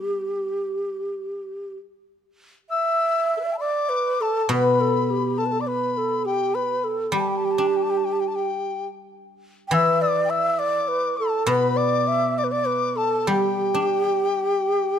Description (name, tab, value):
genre	chinese traditional, Chinese chamber ensemble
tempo	68 BPM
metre	4/4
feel	uneven beats, rubato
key	G gong mode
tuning	A4 = 440 Hz
part	mellow hollow xiao	melody	0.0-15.0 s	G4 to G5	-24 LUFS	right 3 dB	none
part	guzheng	accompaniment	0.0-15.0 s	B2 to D4	-25 LUFS	left 1 dB	none
part	mellow large dizi	second line	2.7-15.0 s	A4 to E6	-25 LUFS	left 6 dB	none
room	light reverb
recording	close, detailed microphones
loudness	-20 LUFS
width	side -8 dB against mid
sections	0.0-2.7 A section; 2.7-15.0 B section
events	none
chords	none